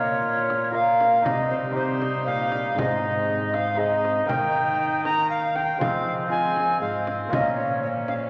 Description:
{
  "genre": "classical, renaissance-style consort dance",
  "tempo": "119 BPM",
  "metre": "3/4",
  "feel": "straight",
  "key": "Bb dorian",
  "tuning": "A4 = 439 Hz",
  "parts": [
    { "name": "bright tenor recorder", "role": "melody", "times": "0.0-8.1 s", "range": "C5 to Bb5", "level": "-27 LUFS", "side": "equal", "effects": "none" },
    { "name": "warm cor anglais", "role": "second line", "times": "0.0-8.3 s", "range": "C4 to F4", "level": "-32 LUFS", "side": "equal", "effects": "none" },
    { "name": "dark bassoon", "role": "accompaniment", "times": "0.0-8.3 s", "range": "F3 to C4", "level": "-38 LUFS", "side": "equal", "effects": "none" },
    { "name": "lute", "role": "accompaniment", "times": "0.0-8.3 s", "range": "Ab2 to Bb4", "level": "-30 LUFS", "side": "equal", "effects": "none" },
    { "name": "dark cello", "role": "bass", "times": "0.0-8.3 s", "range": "Ab2 to F3", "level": "-34 LUFS", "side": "equal", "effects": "none" },
    { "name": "frame drum", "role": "percussion", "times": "0.5-8.3 s", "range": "none", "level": "-36 LUFS", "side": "equal", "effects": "none" }
  ],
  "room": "wet church reverb, RT60 2.6 s",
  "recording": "none",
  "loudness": "-24 LUFS",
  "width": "mono",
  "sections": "0.0-8.3 A section",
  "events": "none",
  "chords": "0.0 Bbm; 1.3 Cm; 2.8 Ab; 4.3 Eb; 5.8 Fm; 7.3 Bbm"
}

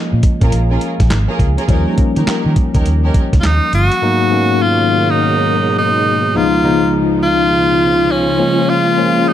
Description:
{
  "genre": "R&B, new jack swing",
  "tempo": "103 BPM",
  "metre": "4/4",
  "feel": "swing 64% on 16ths",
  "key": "G# dorian",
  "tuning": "A4 = 436 Hz",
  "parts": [
    { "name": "tine electric piano", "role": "accompaniment", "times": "0.0-9.3 s", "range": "C#2 to D#5", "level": "-17 LUFS", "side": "left 3 dB", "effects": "medium stereo tremolo" },
    { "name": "vintage muted fingered electric bass", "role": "bass", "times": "0.1-3.9 s", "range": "G1 to D#3", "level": "-15 LUFS", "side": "equal", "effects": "none" },
    { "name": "dusty soul sampler-style drum kit", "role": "drums", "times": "0.2-4.0 s", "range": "handclaps, hi-hat, kick drum, snare drum", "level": "-15 LUFS", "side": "equal", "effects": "none" },
    { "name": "rich studio string section", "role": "stabs", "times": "0.4-3.2 s", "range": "C#4 to A#4", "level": "-23 LUFS", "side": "right 1 dB", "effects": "ping-pong delay" },
    { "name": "edgy tenor saxophone", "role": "melody", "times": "3.4-9.3 s", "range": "C#4 to F#4", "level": "-14 LUFS", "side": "equal", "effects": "none" },
    { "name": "warm studio string section", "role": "sustained chords", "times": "4.0-9.3 s", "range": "B2 to A#4", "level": "-19 LUFS", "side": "right 3 dB", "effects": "none" }
  ],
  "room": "moderate digital room reverb, RT60 1.4 s, small room ambience",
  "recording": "dark, warm production",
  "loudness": "-11 LUFS",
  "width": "side -11 dB against mid",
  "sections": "0.0-4.0 A section; 4.0-9.3 B section",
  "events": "none",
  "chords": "0.0 A#m7; 1.7 D#7; 4.0 G#m9; 6.3 C#7; 8.4 A#m7"
}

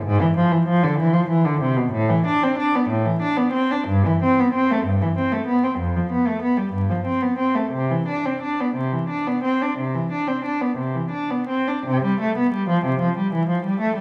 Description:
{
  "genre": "classical, baroque-style suite movement for unaccompanied cello",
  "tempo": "53-65 BPM (dotted quarters)",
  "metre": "12/8",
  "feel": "rubato",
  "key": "C major",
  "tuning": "A4 = 441 Hz",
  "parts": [
    { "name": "warm cello", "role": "solo", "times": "0.0-14.0 s", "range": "F2 to D4", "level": "-21 LUFS", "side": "equal", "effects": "none" }
  ],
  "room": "wet recital hall reverb, RT60 1.5 s",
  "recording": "dark, warm production, vinyl crackle",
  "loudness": "-21 LUFS",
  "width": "mono",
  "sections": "0.0-11.9 A section; 11.9-14.0 B section",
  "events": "none",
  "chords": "none"
}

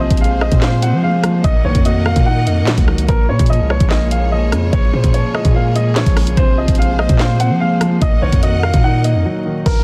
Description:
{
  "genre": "hip hop, drill",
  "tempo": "146 BPM",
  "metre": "4/4",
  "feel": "half-time",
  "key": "Bb minor",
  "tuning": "A4 = 440 Hz",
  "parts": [
    { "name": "dark upright piano", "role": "melody", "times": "0.0-9.8 s", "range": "Bb4 to Gb5", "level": "-24 LUFS", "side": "equal", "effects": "low-pass filter, delay" },
    { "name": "warm concert grand piano", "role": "accompaniment", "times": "0.0-9.7 s", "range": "Bb2 to C5", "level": "-24 LUFS", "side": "equal", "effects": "low-pass filter" },
    { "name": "warm studio string section", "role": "sustained chords", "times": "0.0-9.6 s", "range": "Bb3 to Gb5", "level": "-28 LUFS", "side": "equal", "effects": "none" },
    { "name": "hard-hitting 808-style bass", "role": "bass", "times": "0.0-9.8 s", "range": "Bb1 to F3", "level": "-19 LUFS", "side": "equal", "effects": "none" },
    { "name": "drill drum kit", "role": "drums", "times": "0.1-9.8 s", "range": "handclaps, hi-hat, kick drum, rim click, snare drum", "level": "-18 LUFS", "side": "equal", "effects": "none" },
    { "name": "downlifter", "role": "sound effects", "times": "9.7-9.8 s", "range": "none", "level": "-30 LUFS", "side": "equal", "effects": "none" }
  ],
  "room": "small room reverb",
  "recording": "dense, heavily limited modern master, vinyl crackle",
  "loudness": "-14 LUFS",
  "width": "mono",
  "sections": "0.0-9.7 A section",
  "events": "break 9.2-9.7",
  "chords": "0.0 Fm/Bb; 1.4 Ebm/Bb; 3.1 Bbm7; 6.4 Fm/Bb; 8.0 Ebm/Bb"
}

